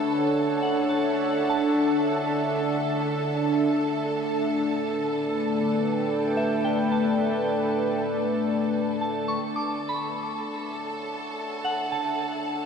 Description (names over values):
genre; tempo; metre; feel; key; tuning
ambient; 68 BPM; 3/4; straight; D major; A4 = 441 Hz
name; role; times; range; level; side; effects
warm analog pad; sustained chords; 0.0-12.7 s; A3 to G5; -25 LUFS; equal; chorus
soft synth bell; arpeggios; 0.0-12.7 s; E5 to D6; -32 LUFS; right 1 dB; chorus, phaser, ping-pong delay
bowed-like drone; drone; 0.0-9.5 s; D3 to D4; -30 LUFS; right 1 dB; built-in reverb
rich studio violin section; texture; 0.0-12.7 s; A4 to A5; -34 LUFS; right 1 dB; none
room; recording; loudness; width
wet huge ambient reverb, RT60 7.5 s; dark, warm production; -23 LUFS; side -6 dB against mid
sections
0.0-9.4 A section; 9.4-12.7 B section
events
none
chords
0.0 Dmaj7; 4.1 A7sus4; 9.4 Dmaj7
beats
0.61 | 1.50 2.38 3.26 | 4.14 5.02 5.91 | 6.79 7.67 8.55 | 9.44 10.32 11.20 | 12.08